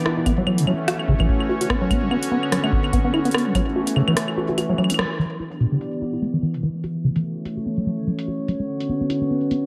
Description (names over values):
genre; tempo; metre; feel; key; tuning
IDM; 146 BPM; 4/4; swing 56% on 16ths; F# phrygian; A4 = 440 Hz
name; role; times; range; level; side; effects
warm analog pad; sustained chords; 0.0-9.7 s; D3 to D5; -27 LUFS; equal; chorus, sidechain pumping
deep acid bass; arpeggios; 0.1-9.6 s; B2 to F#4; -25 LUFS; equal; lush chorus, cassette tape, delay
booming analog drum machine; drums; 0.1-9.6 s; claves, hi-hat, rim click; -29 LUFS; equal; low-pass filter on perc, low-pass filter on hats, low-pass filter on snare, tape echo
electronic kick drum; drums; 0.3-3.6 s; none; -24 LUFS; equal; none
room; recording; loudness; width
moderate plate reverb, RT60 1.8 s, digital ambience; dark, warm production; -22 LUFS; mono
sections
0.0-5.2 A section; 5.2-9.7 B section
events
kick drops out 4.4-5.2; band accent 5.0; filter sweep on drum 5.2-9.7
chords
0.3 F#m7; 1.9 Bmadd9; 3.6 F#m7; 5.2 Em7; 6.8 F#m7; 8.5 Bmadd9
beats
| 0.26 0.67 1.08 1.50 | 1.91 2.32 2.73 3.14 | 3.55 3.96 4.37 4.78 | 5.20 5.61 6.02 6.43 | 6.84 7.25 7.66 8.07 | 8.48 8.89 9.30